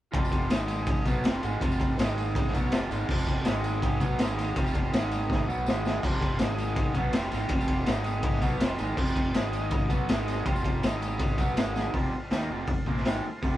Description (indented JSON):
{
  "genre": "garage rock duo or trio",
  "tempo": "163 BPM",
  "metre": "4/4",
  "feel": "straight",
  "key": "unclear",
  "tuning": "A4 = 440 Hz",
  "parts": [
    { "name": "combo organ", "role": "sustained chords", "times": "0.1-13.6 s", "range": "Eb4 to Eb5", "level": "-40 LUFS", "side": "equal", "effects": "none" },
    { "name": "raw garage guitar", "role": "riff", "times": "0.1-13.6 s", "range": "F2 to Eb4", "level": "-31 LUFS", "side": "right 1 dB", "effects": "overdrive" },
    { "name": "fuzz fingered electric bass", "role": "bass", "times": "0.1-13.6 s", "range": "F1 to Eb2", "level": "-33 LUFS", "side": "equal", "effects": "overdrive" },
    { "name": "raw garage drum kit", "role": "drums", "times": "0.1-13.5 s", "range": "crash cymbal, hi-hat, kick drum, ride cymbal, snare drum, splash cymbal", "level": "-27 LUFS", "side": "equal", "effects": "none" },
    { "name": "tambourine", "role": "percussion", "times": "0.2-13.2 s", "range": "none", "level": "-49 LUFS", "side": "left 2 dB", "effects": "none" }
  ],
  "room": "light reverb",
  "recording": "band playing live in one room, cassette tape",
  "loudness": "-25 LUFS",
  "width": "side -14 dB against mid",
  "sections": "0.1-11.9 A section; 11.9-13.6 B section",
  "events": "drum fill 5.3-6.0, 11.8",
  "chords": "0.1 F; 0.5 Ab5; 1.1 F; 2.0 Ab5; 2.5 F; 3.5 Ab5; 4.0 B5; 4.2 Ab5; 4.6 F; 4.9 Ab5; 5.5 B5; 5.7 Ab5; 6.0 F; 6.4 Ab5; 7.0 F; 7.9 Ab5; 8.4 F; 9.4 Ab5; 9.9 B5; 10.1 Ab5; 10.5 F; 10.8 Ab5; 11.4 B5; 11.6 Ab5; 11.9 F"
}